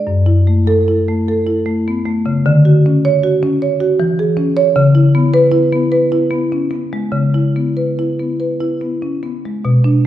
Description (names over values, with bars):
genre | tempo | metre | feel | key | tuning
classical, contemporary piece for solo marimba | 71-79 BPM | 3/4 | rubato | unclear | A4 = 445 Hz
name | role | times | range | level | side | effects
marimba with soft mallets | solo | 0.0-10.1 s | F#2 to C#5 | -12 LUFS | equal | none
room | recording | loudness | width
wet recital hall reverb, RT60 1.6 s | heard from further back in the room | -12 LUFS | side -12 dB against mid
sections
0.1-10.1 A section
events
none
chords
0.1 F#m7; 2.5 Dmaj7; 4.0 E6; 4.8 C#m7